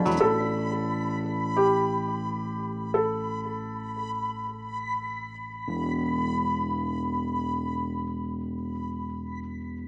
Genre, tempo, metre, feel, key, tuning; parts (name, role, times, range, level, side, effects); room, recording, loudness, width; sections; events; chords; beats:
folktronica; 88 BPM; 4/4; straight; A4 = 440 Hz
backwards swelling texture; texture; 0.0-9.9 s; B5; -34 LUFS; equal; built-in reverb
overdriven fingered electric bass; bass; 0.1-9.9 s; E1 to A1; -33 LUFS; equal
shaker; drums; 0.1-9.9 s; -30 LUFS; equal; low-pass filter on perc, low-pass filter on snare, low-pass filter on room
felt-muted upright piano; melody; 0.2-5.3 s; G4 to A4; -30 LUFS; equal; tape echo
moderate studio reverb, RT60 0.6 s; rough home demo mix, small speaker sound; -29 LUFS; mono
0.2-9.9 A section
0.2 Gadd9/A; 5.7 E5
| 0.22 0.91 1.59 2.27 | 2.95 3.63 4.31 5.00 | 5.68 6.36 7.04 7.72 | 8.40 9.09 9.77